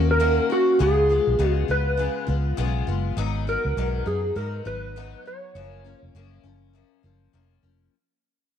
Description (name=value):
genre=indie pop, bedroom pop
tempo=101 BPM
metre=4/4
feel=swing 60% on 16ths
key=unclear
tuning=A4 = 439 Hz
part: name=clean lap steel guitar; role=melody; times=0.0-7.3 s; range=Gb4 to Db5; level=-23 LUFS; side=right 1 dB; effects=ensemble chorus, slapback echo
part: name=picked steel-string acoustic guitar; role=accompaniment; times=0.0-7.9 s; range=Gb2 to Gb4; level=-29 LUFS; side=left 12 dB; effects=lush chorus, warbly pitch drift
part: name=vintage muted fingered electric bass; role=bass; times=0.0-7.9 s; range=F1 to Ab2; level=-25 LUFS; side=right 1 dB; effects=transformer saturation
room=light reverb, digital ambience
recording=1960s-style stereo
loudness=-20 LUFS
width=side -9 dB against mid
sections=0.0-7.9 A section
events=fade-out 0.0-7.9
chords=0.0 Ebm7; 0.8 Db7; 3.2 Abm7; 5.5 Gbmaj7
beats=0.20 | 0.80 1.39 1.99 2.58 | 3.17 3.77 4.36 4.96 | 5.55 6.14 6.74 7.33